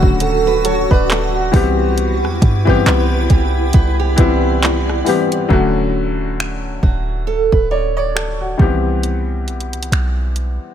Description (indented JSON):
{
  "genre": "contemporary R&B",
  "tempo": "68 BPM",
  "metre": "4/4",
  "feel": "swing 58% on 16ths",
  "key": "D major",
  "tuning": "A4 = 444 Hz",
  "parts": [
    { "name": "warm baby grand piano", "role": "accompaniment", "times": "0.0-10.7 s", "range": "C#3 to D5", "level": "-18 LUFS", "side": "left 3 dB", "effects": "none" },
    { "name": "granular cloud pad", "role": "sustained chords", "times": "0.0-5.5 s", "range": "E4 to C#6", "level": "-23 LUFS", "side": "equal", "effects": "built-in reverb" },
    { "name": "picked old ladder-braced acoustic guitar", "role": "arpeggios", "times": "0.0-8.6 s", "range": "F#4 to D5", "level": "-21 LUFS", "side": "right 9 dB", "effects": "tape echo" },
    { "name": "warm 808-style bass", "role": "bass", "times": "0.0-10.6 s", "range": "D1 to G2", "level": "-18 LUFS", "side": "right 1 dB", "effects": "none" },
    { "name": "smooth R&B drum kit", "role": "drums", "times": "0.0-10.6 s", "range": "finger snaps, handclaps, hi-hat, kick drum, rim click", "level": "-16 LUFS", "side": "right 1 dB", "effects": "none" }
  ],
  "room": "little or no reverb",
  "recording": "none",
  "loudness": "-13 LUFS",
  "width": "side -10 dB against mid",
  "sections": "0.0-5.5 A section; 5.5-10.7 B section",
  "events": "none",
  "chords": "0.0 Dmaj7; 1.5 Cmaj7; 5.5 Dmaj7; 8.6 Cmaj7",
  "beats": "0.21 1.09 | 1.98 2.86 3.74 4.62 | 5.51 6.39 7.27 8.15 | 9.04 9.92"
}